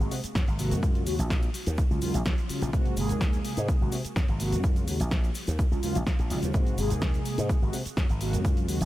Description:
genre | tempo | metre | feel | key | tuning
filtered disco house | 126 BPM | 4/4 | straight | unclear | A4 = 439 Hz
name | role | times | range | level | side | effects
mellow synth brass | accompaniment | 0.0-8.8 s | C3 to Ab4 | -32 LUFS | equal | chorus, phaser, sidechain pumping
slap bass with an envelope filter | bass | 0.0-8.9 s | Ab1 to C3 | -30 LUFS | equal | sidechain pumping
punchy analog drum machine | drums | 0.0-8.9 s | cabasa, hi-hat, snare drum | -36 LUFS | equal | sidechain pumping on hats, sidechain pumping on perc, sidechain pumping on cymbals
tube shaker | percussion | 0.1-8.9 s | none | -47 LUFS | left 3 dB | none
electronic kick drum | drums | 0.4-8.5 s | none | -26 LUFS | equal | none
room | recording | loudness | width
light reverb | none | -24 LUFS | side -15 dB against mid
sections
0.0-8.9 A section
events
none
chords
0.0 Ab9; 0.8 Ebm11; 2.7 Ab9; 4.6 Ebm11; 6.5 Ab9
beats
0.35 | 0.83 1.30 1.78 2.26 | 2.73 3.21 3.69 4.16 | 4.64 5.11 5.59 6.07 | 6.54 7.02 7.50 7.97 | 8.45

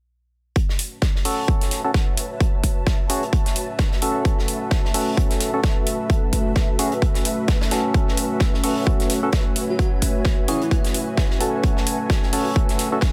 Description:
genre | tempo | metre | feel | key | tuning
bass house | 130 BPM | 4/4 | swing 57% on 16ths | F# minor | A4 = 440 Hz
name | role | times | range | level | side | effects
dark analog pad | sustained chords | 1.2-13.1 s | A3 to G#5 | -31 LUFS | equal | chorus, sidechain pumping
electronic kick drum | drums | 0.6-13.1 s | none | -22 LUFS | equal | overdrive
natural country drum kit | drums | 0.6-13.1 s | hi-hat, snare drum | -35 LUFS | equal | sidechain pumping on hats, high-pass filter on hats, high-pass filter on snare, high-pass filter on room
ethereal airy pad | texture | 1.8-13.1 s | F#4 to A5 | -32 LUFS | equal | ensemble chorus, built-in reverb, sidechain pumping
electronic hi-hat | drums | 0.8-12.9 s | none | -29 LUFS | equal | overdrive
percussive organ stab | stabs | 1.3-13.0 s | C#4 to A4 | -28 LUFS | equal | chorus, sidechain pumping, digital delay
airy dreamy lead | melody | 9.7-10.7 s | E4 to F#4 | -31 LUFS | equal | chorus, digital delay
room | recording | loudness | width
light reverb | none | -21 LUFS | mono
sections
0.6-13.1 A section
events
none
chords
0.6 F#m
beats
| 0.56 1.02 1.48 1.94 | 2.40 2.87 3.33 3.79 | 4.25 4.71 5.17 5.64 | 6.10 6.56 7.02 7.48 | 7.94 8.40 8.87 9.33 | 9.79 10.25 10.71 11.18 | 11.64 12.10 12.56 13.02

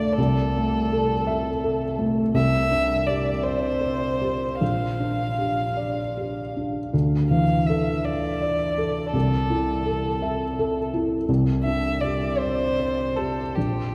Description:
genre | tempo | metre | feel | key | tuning
neoclassical piano and strings | 49-57 BPM (dotted quarters) | 6/8 | rubato | unclear | A4 = 440 Hz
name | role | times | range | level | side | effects
muted violin | melody | 0.0-13.9 s | G4 to F5 | -29 LUFS | equal | none
felt-muted upright piano | accompaniment | 0.0-13.9 s | Bb1 to E5 | -25 LUFS | equal | none
room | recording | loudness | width
wet cathedral reverb, RT60 4.4 s | recorded in a church or concert hall | -24 LUFS | mono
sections
0.0-13.9 A section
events
none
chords
0.2 Am/C; 2.3 Csus2; 4.6 Gm7/Bb; 6.9 Dsus2; 9.1 Am/C; 11.3 Csus2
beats
| 0.17 1.26 | 2.34 3.43 | 4.61 5.78 | 6.93 8.05 | 9.14 10.22 | 11.29 12.40 | 13.56

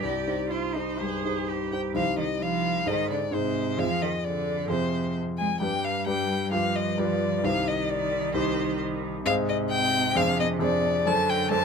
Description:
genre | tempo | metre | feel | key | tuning
quick classical-period movement for piano trio | 131 BPM | 4/4 | rubato | C minor | A4 = 437 Hz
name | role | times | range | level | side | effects
warm violin | melody | 0.0-11.6 s | C5 to A5 | -28 LUFS | left 4 dB | none
warm cello | second line | 0.0-11.6 s | C3 to Ab4 | -31 LUFS | right 9 dB | none
clear grand piano | accompaniment | 0.0-11.6 s | C2 to C5 | -27 LUFS | left 1 dB | none
room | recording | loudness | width
light reverb | close, detailed microphones | -24 LUFS | side -6 dB against mid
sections
0.0-2.0 A section; 2.0-11.6 B section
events
none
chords
0.0 Cm; 2.9 Ab; 3.8 Fm; 5.6 G; 6.5 G7; 7.5 Cm; 9.3 Ab; 10.2 Dm7b5/F; 11.1 D7/F#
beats
| 0.03 0.52 1.00 1.48 | 1.96 2.42 2.88 3.33 | 3.79 4.25 4.71 5.16 | 5.62 6.08 6.54 6.99 | 7.45 7.91 8.36 8.81 | 9.27 9.72 10.17 10.62 | 11.07 11.52

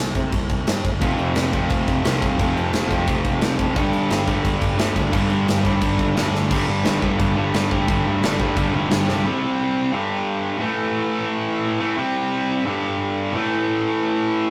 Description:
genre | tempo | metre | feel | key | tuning
punk rock | 175 BPM | 4/4 | straight | unclear | A4 = 440 Hz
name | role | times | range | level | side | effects
fuzz picked electric bass | bass | 0.0-9.2 s | F1 to C3 | -29 LUFS | equal | overdrive
big rock drum kit | drums | 0.1-9.2 s | crash cymbal, kick drum, snare drum | -26 LUFS | equal | none
overdriven electric guitar | riff | 1.0-14.5 s | F2 to C4 | -24 LUFS | equal | none
sludgy distorted guitar | riff | 1.0-9.2 s | F2 to G3 | -26 LUFS | equal | overdrive
room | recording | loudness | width
moderate studio ambience, RT60 0.5 s | rough rehearsal-room recording, tube saturation | -21 LUFS | mono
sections
0.0-6.5 A section; 6.5-9.2 B section; 9.2-14.5 C section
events
drum fill 6.3, 9.1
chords
0.0 C5; 1.0 F5; 3.8 G5; 9.2 C5; 9.9 G5; 10.6 A5; 12.0 C5; 12.7 G5; 13.3 A5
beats
0.34 0.68 | 1.02 1.37 1.71 2.06 | 2.40 2.74 3.08 3.43 | 3.77 4.11 4.46 4.80 | 5.14 5.49 5.83 6.17 | 6.51 6.86 7.20 7.54 | 7.88 8.22 8.56 8.91 | 9.25 9.59 9.93 10.27 | 10.61 10.95 11.29 11.63 | 11.97 12.31 12.65 13.00 | 13.34 13.68 14.02 14.36

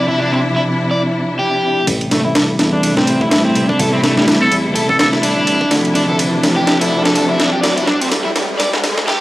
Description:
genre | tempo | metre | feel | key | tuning
breakbeat, breaks | 125 BPM | 4/4 | swing 58% on 16ths | A minor | A4 = 440 Hz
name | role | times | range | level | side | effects
clear symphonic string section | sustained chords | 0.0-9.0 s | C3 to E4 | -17 LUFS | equal | sidechain pumping, low-pass filter
crunchy overdriven guitar | riff | 0.0-9.2 s | G3 to D5 | -18 LUFS | equal | low-pass filter, tape echo
fat analog bass | bass | 1.9-9.1 s | A1 to E2 | -22 LUFS | equal | high-pass filter
breakbeat sampler-style drum kit | drums | 1.9-9.2 s | kick drum, ride cymbal, snare drum | -17 LUFS | equal | high-pass filter on cymbals, studio reverb, high-pass filter on kick, high-pass filter on snare
riser | sound effects | 5.4-9.2 s | none | -25 LUFS | right 1 dB | none
trumpet with metal mute | melody | 4.4-5.1 s | A4 | -17 LUFS | equal | telephone sound, tape echo
room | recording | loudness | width
light reverb | dry, gritty hardware recording, cassette tape, high-pass filter | -12 LUFS | side -17 dB against mid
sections
0.0-1.9 A section; 1.9-9.2 B section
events
build-up 1.9-9.2; filter sweep on overdriven electric guitar 1.9-9.2; filter sweep on string section 1.9-9.2; filter sweep 1.9-9.2; riser 5.4-9.2; drum fill 5.7-9.1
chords
0.0 Dm9; 1.9 Am7; 5.7 Dm9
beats
0.43 0.91 1.39 | 1.87 2.35 2.83 3.31 | 3.79 4.27 4.75 5.23 | 5.71 6.19 6.67 7.15 | 7.63 8.11 8.59 9.07

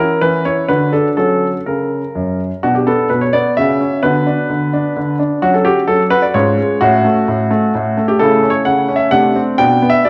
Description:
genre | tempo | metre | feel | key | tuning
classical-period piano sonatina | 129 BPM | 3/4 | straight | unclear | A4 = 438 Hz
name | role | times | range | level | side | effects
clear grand piano | solo | 0.0-10.1 s | F#2 to G5 | -14 LUFS | equal | none
room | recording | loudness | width
moderate recital hall reverb, RT60 1.7 s | worn, warbling old tape, cassette tape, warbly pitch drift | -14 LUFS | mono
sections
0.0-2.6 A section; 2.6-10.1 A section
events
none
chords
0.0 F#7 (rootless); 0.7 Bm/D; 1.2 F#; 2.6 Bm; 3.6 F#5/C#; 4.0 Bm/D; 5.4 F#5; 6.3 C#/G#; 6.8 F#m/A; 8.2 A/C#; 9.1 D7/C; 9.6 Bmadd11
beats
0.21 0.68 | 1.17 1.66 2.15 | 2.63 3.10 3.57 | 4.03 4.50 4.96 | 5.42 5.89 6.35 | 6.81 7.27 7.74 | 8.20 8.66 9.12 | 9.59 10.06

